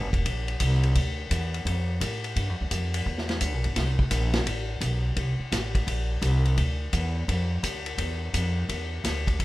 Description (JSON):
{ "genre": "jazz, big band swing", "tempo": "171 BPM", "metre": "4/4", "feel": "swing 65% on 8ths", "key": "unclear", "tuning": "A4 = 439 Hz", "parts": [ { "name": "upright bass", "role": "bass", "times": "0.0-9.4 s", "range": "E1 to A2", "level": "-26 LUFS", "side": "equal", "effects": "none" }, { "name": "vintage drum kit", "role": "drums", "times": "0.1-9.4 s", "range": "hi-hat, kick drum, ride cymbal, snare drum", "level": "-29 LUFS", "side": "left 1 dB", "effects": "none" } ], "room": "little or no reverb", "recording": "rough home demo mix", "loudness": "-24 LUFS", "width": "side -18 dB against mid", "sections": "0.0-9.4 A section", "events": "none", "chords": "none", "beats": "0.26 0.61 | 0.96 1.31 1.66 2.01 | 2.37 2.72 3.07 3.42 | 3.77 4.12 4.47 4.83 | 5.18 5.53 5.88 6.23 | 6.58 6.94 7.29 7.64 | 7.99 8.35 8.70 9.05 | 9.40" }